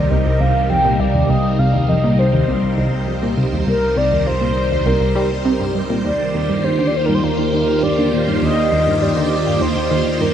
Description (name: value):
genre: ambient, sequencer-driven space music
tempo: 101 BPM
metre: 4/4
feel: straight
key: C minor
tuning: A4 = 439 Hz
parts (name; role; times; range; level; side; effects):
- mellow horn-like synth lead; melody; 0.0-10.3 s; Bb4 to G5; -20 LUFS; equal; analog chorus, analog delay
- phased string machine; sustained chords; 0.0-10.3 s; C3 to C5; -20 LUFS; equal; ensemble chorus, phaser
- tight sequenced synth; riff; 0.0-10.3 s; C2 to G3; -20 LUFS; equal; chorus, phaser, analog delay
- analog drone; bass; 0.0-10.3 s; C2 to Eb2; -22 LUFS; equal; chorus
room: wet huge ambient reverb, RT60 9.1 s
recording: none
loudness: -14 LUFS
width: side -9 dB against mid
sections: 0.0-10.3 A section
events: none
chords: 0.0 Cm7; 6.1 Ebmaj7